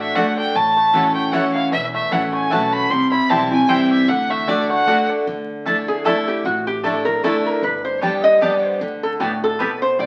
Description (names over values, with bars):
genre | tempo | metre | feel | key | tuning
bluegrass | 153 BPM | 3/4 | swing 55% on 8ths | D major | A4 = 440 Hz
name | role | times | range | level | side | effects
bluegrass banjo | melody | 0.0-5.3, 10.0-10.1 s | E3 to G4 | -30 LUFS | equal | none
clear fiddle | melody | 0.0-5.1 s | D5 to C6 | -21 LUFS | equal | none
picked steel-string acoustic guitar | accompaniment | 0.0-10.1 s | E2 to G4 | -23 LUFS | equal | none
upright bass | bass | 0.0-10.1 s | E1 to D2 | -39 LUFS | equal | none
mandolin | stabs | 0.1-9.7 s | A3 to A5 | -26 LUFS | equal | none
lap resonator guitar | second line | 5.9-10.1 s | F#4 to Eb5 | -21 LUFS | equal | none
room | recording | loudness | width
wet studio reverb, RT60 0.8 s | very old 78 rpm record, vinyl crackle | -18 LUFS | mono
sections
0.0-5.3 A section; 5.3-10.1 A section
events
fiddle solo 0.0-5.3; resonator guitar played with a steel bar solo 5.3-10.1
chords
0.0 D; 0.6 A6; 2.9 C; 4.1 D; 5.3 Dsus2; 7.6 Gadd9